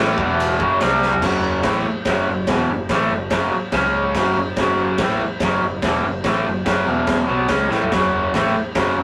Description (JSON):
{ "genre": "garage rock duo or trio", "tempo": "143 BPM", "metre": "4/4", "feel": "straight", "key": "unclear", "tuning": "A4 = 443 Hz", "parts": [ { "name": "raw garage guitar", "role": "riff", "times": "0.0-9.0 s", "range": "E2 to C#4", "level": "-21 LUFS", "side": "equal", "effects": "overdrive" }, { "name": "hollow-body short-scale picked electric bass", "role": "bass", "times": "0.0-9.0 s", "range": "E1 to C#2", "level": "-33 LUFS", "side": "equal", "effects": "tube saturation" }, { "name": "raw garage drum kit", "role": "drums", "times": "0.2-8.9 s", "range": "crash cymbal, kick drum, snare drum, toms", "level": "-25 LUFS", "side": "equal", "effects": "none" } ], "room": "moderate small room reverb, RT60 0.6 s", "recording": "rough rehearsal-room recording", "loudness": "-19 LUFS", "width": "mono", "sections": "0.0-1.2 A section; 1.2-9.0 B section", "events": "drum fill 1.0, 7.7", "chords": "0.2 E5; 0.6 F#5; 0.8 C5; 1.2 F#5; 3.7 C#5; 4.2 F#5; 6.9 E5; 7.3 F#5" }